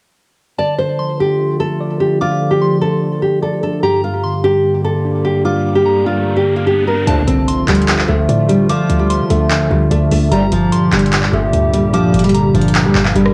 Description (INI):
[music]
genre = hip hop, trap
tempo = 148 BPM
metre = 4/4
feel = half-time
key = D minor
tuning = A4 = 441 Hz
[part]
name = nylon-string guitar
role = melody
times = 0.6-13.3 s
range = F3 to D5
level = -18 LUFS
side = equal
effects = cassette tape, tape echo
[part]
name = soft synth bell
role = second line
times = 0.6-13.3 s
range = A5 to D6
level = -28 LUFS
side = equal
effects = chorus, cassette tape, tape echo
[part]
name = mellow tine electric piano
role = accompaniment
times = 0.6-13.3 s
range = G2 to D5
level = -22 LUFS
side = equal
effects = cassette tape
[part]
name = warbly tape-like pad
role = sustained chords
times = 0.6-13.3 s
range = Bb2 to G4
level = -23 LUFS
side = equal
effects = chorus, built-in reverb, cassette tape
[part]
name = riser and impact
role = sound effects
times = 5.0-8.7 s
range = none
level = -30 LUFS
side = equal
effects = none
[part]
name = mellow brass ensemble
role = stabs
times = 7.1-7.2, 10.3-10.4 s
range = D2 to G3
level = -25 LUFS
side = equal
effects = cassette tape
[part]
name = short 808-style bass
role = bass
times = 7.1-13.3 s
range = G1 to D3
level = -21 LUFS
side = equal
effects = none
[part]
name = booming analog drum machine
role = drums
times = 7.1-13.3 s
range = handclaps, hi-hat, rim click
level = -22 LUFS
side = equal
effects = vintage 12-bit sampler grit, cassette tape
[sound]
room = moderate studio reverb, RT60 0.5 s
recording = home recording on cassette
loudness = -14 LUFS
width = mono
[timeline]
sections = 0.6-7.1 A section; 7.1-13.3 B section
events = riser 5.0-7.1; impact 7.1-8.7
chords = 0.6 Dm; 3.8 Gm; 7.1 Dm; 10.3 Gm